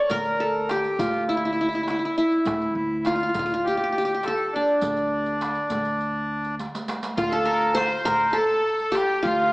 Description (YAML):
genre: Arabic maqam ensemble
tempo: 102 BPM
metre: 4/4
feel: straight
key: D minor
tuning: A4 = 439 Hz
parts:
  - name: qanun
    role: melody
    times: 0.0-9.5 s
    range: D4 to D5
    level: -23 LUFS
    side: equal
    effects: none
  - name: accordion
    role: second line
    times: 0.0-9.5 s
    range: D4 to C#5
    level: -26 LUFS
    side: equal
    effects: none
  - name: upright bass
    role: bass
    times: 0.1-9.5 s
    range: D2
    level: -33 LUFS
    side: equal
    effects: none
  - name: darbuka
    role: percussion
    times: 0.1-9.5 s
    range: none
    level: -36 LUFS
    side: right 1 dB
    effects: none
  - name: riq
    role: percussion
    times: 0.1-9.5 s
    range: none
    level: -39 LUFS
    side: right 2 dB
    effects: none
  - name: clear studio violin section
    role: second line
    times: 7.2-9.5 s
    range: F4 to C5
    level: -32 LUFS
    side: equal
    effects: none
room: wet recital hall reverb, RT60 1.7 s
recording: small speaker sound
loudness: -21 LUFS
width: side -23 dB against mid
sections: 0.0-7.2 A section; 7.2-9.5 B section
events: drum fill 6.6-7.2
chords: none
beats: | 0.10 0.69 1.28 1.87 | 2.46 3.05 3.64 4.23 | 4.82 5.41 6.00 6.59 | 7.18 7.77 8.36 8.95